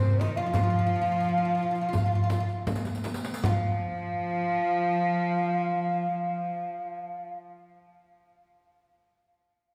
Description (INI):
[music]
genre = Arabic maqam ensemble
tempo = 76-91 BPM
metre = 4/4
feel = straight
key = unclear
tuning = A4 = 440 Hz
[part]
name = mellow hollow low ney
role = melody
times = 0.0-7.3 s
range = C5 to Gb5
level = -32 LUFS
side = equal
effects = none
[part]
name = oud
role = second line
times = 0.0-7.5 s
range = C4 to F4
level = -41 LUFS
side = equal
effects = none
[part]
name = rich studio cello section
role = second line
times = 0.0-7.3 s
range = C3 to F3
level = -34 LUFS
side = equal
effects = tape echo
[part]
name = riq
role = percussion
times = 0.0-3.8 s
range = none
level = -41 LUFS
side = equal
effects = none
[part]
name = darbuka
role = percussion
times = 0.2-3.8 s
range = none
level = -32 LUFS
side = equal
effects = none
[part]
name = frame drum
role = percussion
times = 0.2-3.8 s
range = none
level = -35 LUFS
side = equal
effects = none
[sound]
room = wet recital hall reverb, RT60 1.6 s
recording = heard from further back in the room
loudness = -28 LUFS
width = mono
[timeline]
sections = 0.0-3.4 A section; 3.4-6.6 B section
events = slowing down 0.0-3.4; drum fill 2.7-3.4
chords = none